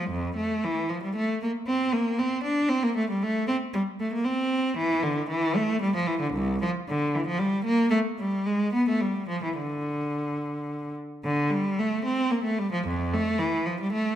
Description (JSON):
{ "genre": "classical, baroque-style suite movement for unaccompanied cello", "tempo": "105-118 BPM", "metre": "3/4", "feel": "rubato", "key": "D minor", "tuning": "A4 = 440 Hz", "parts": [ { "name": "rich cello", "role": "solo", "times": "0.0-14.2 s", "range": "C2 to D4", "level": "-24 LUFS", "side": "equal", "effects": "none" } ], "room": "moderate recital hall reverb, RT60 1.4 s", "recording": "minimal, uncompressed stereo recording", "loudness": "-24 LUFS", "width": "side -11 dB against mid", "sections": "0.0-11.2 A section; 11.2-14.2 A section", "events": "none", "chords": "none", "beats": "| 0.10 0.63 1.14 | 1.66 2.17 2.69 | 3.21 3.73 4.25 | 4.76 5.29 5.81 | 6.35 6.88 7.41 | 7.93 8.46 9.01 | 9.56 10.12 10.67 | 11.23 11.77 12.30 | 12.86 13.40 13.93" }